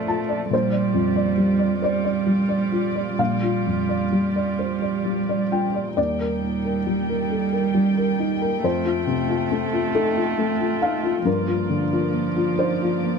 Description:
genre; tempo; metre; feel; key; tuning
neoclassical piano and strings; 45 BPM (dotted quarters); 6/8; rubato; unclear; A4 = 440 Hz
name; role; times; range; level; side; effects
dark cello; second line; 0.0-13.2 s; F3 to A3; -24 LUFS; right 10 dB; none
felt-muted upright piano; accompaniment; 0.0-13.2 s; Bb1 to A5; -22 LUFS; left 4 dB; none
dark chamber string section; sustained chords; 0.0-13.2 s; F3 to G5; -31 LUFS; left 1 dB; none
room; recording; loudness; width
light reverb; none; -20 LUFS; side -5 dB against mid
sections
0.0-13.2 A section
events
none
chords
0.0 Bbmaj7; 0.5 Gm7/Bb; 6.0 Eb; 8.6 F7; 11.3 Gm7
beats
| 0.52 1.83 | 3.19 4.59 | 5.97 7.32 | 8.64 9.96 | 11.26 12.59

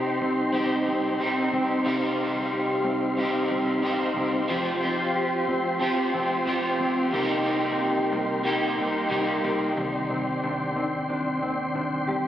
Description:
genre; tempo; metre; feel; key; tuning
dream pop; 91 BPM; 4/4; straight; C minor; A4 = 438 Hz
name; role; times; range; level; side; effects
electric guitar at the edge of break-up; accompaniment; 0.0-10.3 s; C3 to G4; -28 LUFS; right 2 dB; harmonic tremolo, analog chorus
mellow tonewheel organ; sustained chords; 0.0-12.3 s; Eb3 to C6; -28 LUFS; equal; chorus vibrato, wide subtle chorus
mellow electric guitar; arpeggios; 0.0-12.3 s; C3 to G4; -28 LUFS; left 2 dB; ensemble chorus, ping-pong delay
plucky analog bass; bass; 0.2-12.3 s; F1 to Eb2; -36 LUFS; equal; none
room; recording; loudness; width
moderate huge ambient reverb, RT60 6.5 s; recorded on a phone in the room, studio reverb, compression; -23 LUFS; side -11 dB against mid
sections
0.0-9.8 A section; 9.8-12.3 B section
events
none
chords
0.0 Cm; 4.5 Fsus2; 7.1 Cm7; 9.8 Cmadd9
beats
0.53 1.19 | 1.85 2.51 3.17 3.83 | 4.49 5.15 5.81 6.47 | 7.13 7.79 8.45 9.11 | 9.77 10.42 11.08 11.74

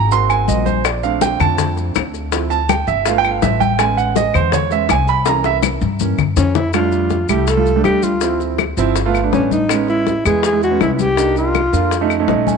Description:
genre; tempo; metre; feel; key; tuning
Afro-Cuban jazz; 163 BPM; 4/4; straight; unclear; A4 = 440 Hz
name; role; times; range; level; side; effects
warm grand piano; accompaniment; 0.0-12.6 s; E3 to C6; -18 LUFS; right 10 dB; none
upright bass; bass; 0.0-12.6 s; G1 to G2; -20 LUFS; left 1 dB; none
congas; percussion; 0.1-12.6 s; none; -22 LUFS; left 16 dB; none
maracas; percussion; 0.1-12.6 s; none; -31 LUFS; left 16 dB; none
claves; percussion; 0.3-12.3 s; none; -24 LUFS; left 16 dB; none
bongos; percussion; 0.8-12.5 s; none; -24 LUFS; left 16 dB; none
breathy alto saxophone; melody; 6.4-12.1 s; Db4 to A4; -18 LUFS; left 1 dB; none
room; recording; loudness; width
moderate plate reverb, RT60 2.7 s; 1960s-style stereo with parts hard left and right, nothing above 10.5 kHz; -14 LUFS; side -5 dB against mid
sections
0.0-6.7 A section; 6.7-12.6 B section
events
grand piano solo 0.0-6.7; drum fill 5.3-6.7; grand piano fill 12.1-12.6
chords
0.1 Ab9; 0.8 Bbmaj9; 2.3 Dm7; 3.1 G9; 3.8 Amaj9; 5.3 C7b9; 6.7 F6; 8.2 Dm7; 9.0 G9; 9.7 Amaj9; 11.2 Cm9; 11.9 Faug7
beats
0.11 0.48 | 0.85 1.22 1.58 1.95 | 2.32 2.69 3.06 3.42 | 3.79 4.16 4.53 4.90 | 5.26 5.63 6.00 6.37 | 6.74 7.11 7.48 7.85 | 8.22 8.59 8.96 9.33 | 9.70 10.07 10.44 10.81 | 11.18 11.54 11.91 12.29

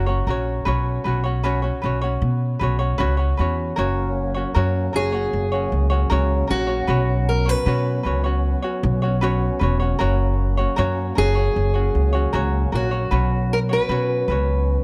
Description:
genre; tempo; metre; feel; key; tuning
pop; 77 BPM; 4/4; straight; F# major; A4 = 440 Hz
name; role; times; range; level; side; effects
ukulele; accompaniment; 0.0-14.8 s; C#4 to C#5; -27 LUFS; equal; none
upright bass; bass; 0.0-14.8 s; E1 to B2; -23 LUFS; equal; none
percussive tonewheel organ; sustained chords; 3.8-14.8 s; F#3 to C#4; -33 LUFS; equal; overdrive, chorus vibrato, slow rotary speaker
fingerpicked steel-string acoustic guitar; melody; 5.0-14.8 s; F#4 to B4; -26 LUFS; equal; tape echo
room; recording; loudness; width
light reverb, small room ambience; dark, warm production; -21 LUFS; mono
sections
0.0-3.8 A section; 3.8-14.8 B section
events
none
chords
0.0 F#; 0.7 Bsus2; 3.8 F#; 6.9 Bsus2; 10.0 F#; 13.1 Bsus2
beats
| 0.66 1.44 2.22 3.00 | 3.77 4.55 5.33 6.11 | 6.89 7.67 8.45 9.22 | 10.00 10.78 11.56 12.34 | 13.11 13.89 14.67

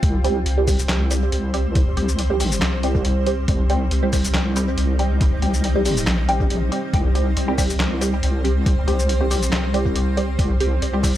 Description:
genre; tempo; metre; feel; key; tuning
deep dubstep; 139 BPM; 4/4; swing 53% on 16ths, half-time; C minor; A4 = 445 Hz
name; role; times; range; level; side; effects
granular cloud pad; sustained chords; 0.0-11.2 s; G3 to D5; -28 LUFS; right 1 dB; built-in reverb
deep soft wobble bass; bass; 0.0-11.2 s; Bb1 to C2; -20 LUFS; equal; chorus, tube saturation
electronic kick drum; drums; 0.0-11.1 s; none; -20 LUFS; equal; high-pass filter on kick
trip hop sampler-style drum kit; drums; 0.0-11.1 s; handclaps, hi-hat, shaker, snare drum; -26 LUFS; left 1 dB; none
filtered dub chord stab; stabs; 0.2-11.2 s; G3 to G4; -25 LUFS; right 1 dB; phaser, analog chorus, cassette tape, dub echo
room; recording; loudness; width
digital ambience; echo-heavy mix; -17 LUFS; side -13 dB against mid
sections
0.0-11.2 A section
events
drop 0.0-11.2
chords
0.0 C5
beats
| 0.03 0.46 0.89 1.32 | 1.75 2.19 2.62 3.05 | 3.48 3.91 4.34 4.78 | 5.21 5.64 6.07 6.50 | 6.93 7.37 7.80 8.23 | 8.66 9.09 9.52 9.96 | 10.39 10.82

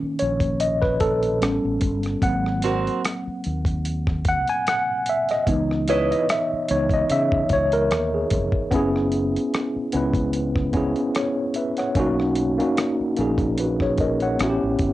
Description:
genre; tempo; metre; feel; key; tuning
R&B, neo-soul; 74 BPM; 4/4; swing 54% on 16ths; unclear; A4 = 440 Hz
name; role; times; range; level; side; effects
tine electric piano; accompaniment; 0.0-14.9 s; D#3 to G#5; -21 LUFS; equal; overdrive, fast stereo tremolo, cassette tape
mellow fretless electric bass; bass; 0.0-14.9 s; E#1 to C#3; -26 LUFS; equal; analog chorus
dusty soul sampler-style drum kit; drums; 0.2-14.9 s; hi-hat, kick drum, rim click; -26 LUFS; equal; cassette tape
nylon-string guitar; second line; 2.6-6.3 s; B#3 to D#5; -22 LUFS; right 5 dB; cassette tape
room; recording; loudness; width
moderate small room reverb, RT60 0.5 s; home recording on cassette, nothing above 10.8 kHz, faint mains hum; -20 LUFS; side -15 dB against mid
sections
0.0-8.7 A section; 8.7-14.9 B section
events
tine electric piano solo 0.0-8.7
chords
0.0 Bmaj9; 1.4 A9; 2.2 G#9; 5.5 C#m9; 8.7 F#7sus4; 12.0 Bmaj9; 14.4 A9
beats
0.61 1.42 | 2.23 3.04 3.85 4.66 | 5.47 6.28 7.09 7.90 | 8.71 9.53 10.34 11.15 | 11.96 12.77 13.58 14.39

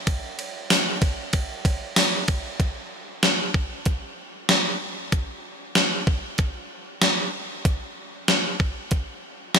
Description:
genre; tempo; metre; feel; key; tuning
dream pop; 95 BPM; 4/4; straight; none; none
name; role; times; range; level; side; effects
gated 80s digital drum machine; drums; 0.1-9.6 s; hi-hat, kick drum, ride cymbal, snare drum, tambourine; -22 LUFS; equal; gated reverb, gated reverb snare, overdrive
room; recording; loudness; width
light reverb; none; -21 LUFS; side -6 dB against mid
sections
0.0-2.6 A section; 2.6-9.6 B section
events
none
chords
none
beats
| 0.07 0.70 1.33 1.97 | 2.60 3.23 3.86 4.49 | 5.12 5.76 6.39 7.02 | 7.65 8.28 8.91 9.55

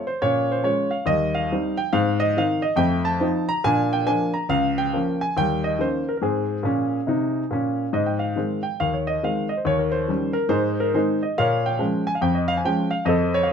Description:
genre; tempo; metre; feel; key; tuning
jazz, stride piano; 140 BPM; 4/4; swing 64% on 8ths; Ab major; A4 = 440 Hz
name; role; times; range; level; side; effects
clear grand piano; solo; 0.0-13.5 s; Db2 to Bb5; -20 LUFS; equal; none
room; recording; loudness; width
moderate studio reverb, RT60 0.7 s; minimal, uncompressed stereo recording; -20 LUFS; side -7 dB against mid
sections
0.0-7.9 A section; 7.9-13.5 A section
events
none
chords
0.2 Bbm7; 1.1 Eb69; 1.9 Ab; 2.8 F7; 3.7 Bb; 4.5 Bbm/Db; 5.4 Eb7; 6.2 Ab; 9.7 Eb7; 10.5 Ab; 11.4 Bbm7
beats
0.24 0.66 | 1.09 1.52 1.95 2.37 | 2.80 3.23 3.66 4.09 | 4.51 4.94 5.37 5.80 | 6.23 6.66 7.08 7.51 | 7.94 8.37 8.80 9.23 | 9.65 10.08 10.51 10.94 | 11.37 11.80 12.23 12.66 | 13.09 13.51

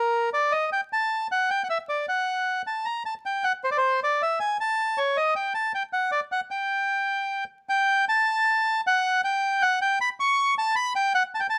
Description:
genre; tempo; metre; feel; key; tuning
tango; 156 BPM; 3/4; rubato; G harmonic minor; A4 = 440 Hz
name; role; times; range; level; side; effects
bandoneon; solo; 0.0-11.6 s; Bb4 to C#6; -24 LUFS; equal; none
room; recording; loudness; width
light reverb; vinyl crackle; -25 LUFS; mono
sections
0.0-7.7 A section; 7.7-11.6 A section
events
none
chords
none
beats
0.32 | 0.71 1.09 1.48 | 1.87 2.25 2.65 | 3.04 3.43 3.82 | 4.20 4.58 4.97 | 5.35 5.74 6.12 | 6.51 6.89 7.29 | 7.68 8.07 8.46 | 8.84 9.22 9.61 | 9.99 10.37 10.75 | 11.13 11.52

